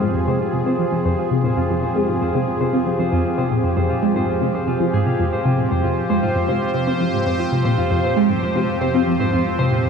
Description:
ambient, sequencer-driven space music; 116 BPM; 4/4; straight; F minor; A4 = 440 Hz
sweeping resonant pad; sustained chords; 0.0-9.9 s; F3 to C5; -22 LUFS; right 1 dB; chorus
concert harp; arpeggios; 0.0-9.9 s; F4 to F5; -26 LUFS; left 3 dB; auto-pan, low-pass filter, tape echo
resonant blip pluck; riff; 0.0-9.9 s; F2 to C4; -20 LUFS; equal; phaser, lush chorus, tape echo
analog drone; bass; 0.0-9.9 s; F2; -38 LUFS; equal
wet cathedral reverb, RT60 5.7 s; in a vast, echoing space; -17 LUFS; side -6 dB against mid
0.0-9.9 A section
filter sweep on harp 0.0-9.9
0.0 Fmadd9
0.02 0.54 | 1.05 1.57 2.09 2.60 | 3.12 3.64 4.16 4.67 | 5.19 5.71 6.23 6.74 | 7.26 7.78 8.29 8.81 | 9.33 9.85

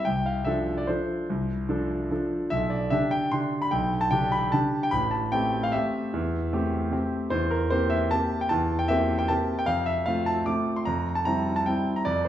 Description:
classical, piano waltz; 150 BPM; 3/4; rubato; A4 = 439 Hz
clear concert grand piano; solo; 0.0-12.3 s; A1 to D6; -24 LUFS; equal
wet recital hall reverb, RT60 1.4 s; heard from further back in the room; -24 LUFS; side -11 dB against mid
0.0-12.3 A section
0.1 Dm7/C; 2.5 G/B; 4.9 Am7; 7.3 C7/E; 9.7 F; 10.9 C/F
| 0.06 0.46 0.88 | 1.29 1.69 2.11 | 2.52 2.92 3.32 | 3.72 4.12 4.53 | 4.93 5.33 5.73 | 6.14 6.53 6.92 | 7.32 7.72 8.12 | 8.51 8.89 9.30 | 9.69 10.07 10.47 | 10.86 11.26 11.67 | 12.07

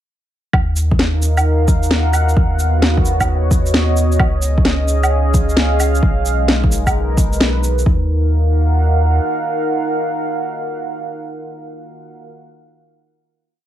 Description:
future garage; 131 BPM; 4/4; swing 66% on 16ths; Eb minor; A4 = 440 Hz
dark analog pad; sustained chords; 1.1-12.3 s; Ab3 to Gb5; -20 LUFS; right 1 dB; chorus, sidechain pumping
warm sub bass; bass; 0.5-9.2 s; Cb2 to Eb2; -16 LUFS; equal; tube saturation, sidechain pumping
electronic kick drum; drums; 0.5-8.0 s; -16 LUFS; equal
electronic woodblock, shaker and snare drum; drums; 0.5-7.8 s; -19 LUFS; equal
digital ambience; -13 LUFS; side -12 dB against mid
0.5-7.9 groove; 7.9-11.5 final chord
0.5 Ebm; 2.4 Bmaj7/D#; 4.2 Db7; 6.0 Abm/Cb; 7.9 Ebm
| 0.53 0.99 1.45 1.91 | 2.37 2.82 3.28 3.74 | 4.20 4.66 5.11 5.57 | 6.03 6.49 6.95 7.40 | 7.86 8.32 8.78 9.24 | 9.69 10.15 10.61 11.07

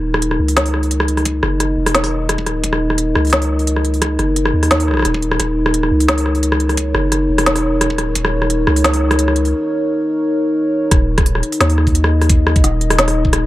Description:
half-time drum and bass; 174 BPM; 4/4; swing 53% on 16ths, half-time; A4 = 440 Hz
dark analog pad; sustained chords; 0.0-13.5 s; Eb4 to Eb5; -18 LUFS; equal; chorus, sidechain pumping
long sustained 808-style bass; bass; 0.0-13.5 s; Eb1 to Eb2; -17 LUFS; equal
organic electronic drum kit; drums; 0.1-13.4 s; hi-hat, rim click, snare drum; -18 LUFS; equal
electronic kick drum; drums; 1.3-8.2, 10.9-13.3 s; -16 LUFS; equal; high-pass filter on kick, high-pass filter on room
wet spring reverb, RT60 1.7 s; -13 LUFS; side -16 dB against mid
0.0-10.9 A section; 10.9-13.5 B section
build-up 0.0-10.9; break 9.5-10.9; drop 10.9-13.5
0.0 Eb5
0.22 0.57 0.91 | 1.26 1.60 1.95 2.29 | 2.64 2.98 3.33 3.67 | 4.02 4.36 4.71 5.05 | 5.40 5.74 6.09 6.43 | 6.78 7.12 7.47 7.81 | 8.16 8.50 8.85 9.19 | 9.54 9.88 10.22 10.57 | 10.91 11.26 11.60 11.95 | 12.29 12.64 12.98 13.33

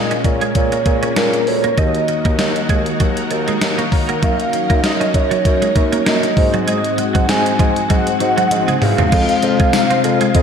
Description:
1980s-style pop; 98 BPM; 4/4; swing 55% on 16ths; A4 = 441 Hz
warm velvety synth lead; melody; 0.0-10.4 s; Bb4 to Ab5; -19 LUFS; right 2 dB; chorus, ping-pong delay
mellow tine electric piano; accompaniment; 0.0-10.4 s; Ab2 to Db6; -22 LUFS; left 4 dB; medium stereo tremolo
string machine, violins; sustained chords; 0.0-10.4 s; C3 to Bb4; -23 LUFS; left 1 dB; ensemble chorus
warm bassoon; bass; 0.0-10.4 s; D2 to Bb2; -23 LUFS; equal
twelve-string electric guitar; riff; 0.1-10.3 s; F3 to Eb4; -23 LUFS; right 5 dB; ensemble chorus, ping-pong delay
gated 80s digital drum machine; drums; 0.1-10.4 s; crash cymbal, hi-hat, kick drum, snare drum, tambourine, toms; -18 LUFS; equal; gated reverb, gated reverb snare
wet lush hall reverb, RT60 1.8 s, digital ambience; dreamy mix soaked in reverb; -13 LUFS; side -7 dB against mid
0.0-9.1 A section; 9.1-10.4 B section
drum fill 8.5-9.1
0.0 Bbm7; 1.8 Ebm; 4.2 Gb6; 6.4 Ab7; 9.1 Fm
0.55 1.16 | 1.78 2.39 3.00 3.61 | 4.22 4.84 5.45 6.06 | 6.67 7.29 7.90 8.51 | 9.12 9.73 10.35

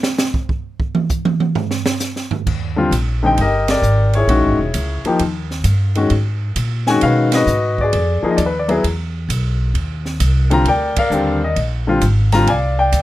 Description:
jazz piano trio; 132 BPM; 4/4; swing 68% on 8ths; Eb major; A4 = 440 Hz
open jazz drum kit; drums; 0.0-13.0 s; crash cymbal, hi-hat, kick drum, ride cymbal, snare drum, toms; -22 LUFS; right 3 dB
upright bass; bass; 2.5-13.0 s; Fb1 to Cb3; -17 LUFS; equal
clear grand piano; melody; 2.8-13.0 s; D3 to Bb5; -16 LUFS; left 2 dB
little or no reverb; close, detailed microphones; -15 LUFS; side -15 dB against mid
0.0-2.5 A section; 2.5-13.0 B section
drum solo 0.0-2.5; band accent 3.6, 7.2, 10.9
0.0 N.C.; 2.5 Ebmaj7; 4.3 Bbm7b5; 5.2 Eb; 6.1 Abm7; 7.9 Fm7; 8.8 E5; 9.7 Ebmaj9; 11.6 Bb7
0.18 | 0.64 1.09 1.55 2.01 | 2.46 2.92 3.37 3.83 | 4.28 4.74 5.20 5.65 | 6.11 6.56 7.02 7.47 | 7.93 8.38 8.84 9.29 | 9.75 10.20 10.66 11.11 | 11.57 12.02 12.48 12.93

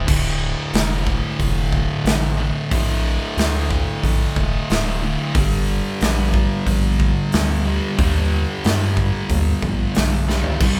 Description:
stoner and doom metal; 91 BPM; 4/4; straight; D phrygian; A4 = 438 Hz
thick fuzz guitar; riff; 0.0-10.8 s; D2 to C4; -25 LUFS; equal; distortion
rubbery square bass; bass; 0.0-10.8 s; D1 to G2; -24 LUFS; equal; overdrive
big rock drum kit; drums; 0.1-10.8 s; crash cymbal, hi-hat, kick drum, snare drum, toms; -24 LUFS; equal
light reverb; band playing live in one room; -20 LUFS; mono
0.1-10.8 A section
drum fill 10.3-10.6
0.1 Dm; 5.4 Gm
| 0.09 0.75 1.41 2.07 | 2.72 3.38 4.04 4.70 | 5.36 6.02 6.67 7.33 | 7.99 8.65 9.31 9.96 | 10.62

